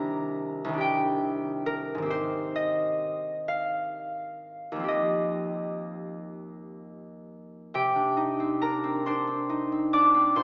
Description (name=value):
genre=classical, solo harp piece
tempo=41-48 BPM (dotted quarters)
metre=6/8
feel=rubato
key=Eb major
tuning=A4 = 440 Hz
part: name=concert harp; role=solo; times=0.0-10.4 s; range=C2 to D6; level=-28 LUFS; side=equal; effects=none
room=wet church reverb, RT60 2.8 s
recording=small speaker sound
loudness=-28 LUFS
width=mono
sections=0.0-7.7 A section; 7.7-10.4 B section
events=none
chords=0.0 Cm9; 2.1 Abmaj7; 4.9 Eb69; 7.7 Cmadd9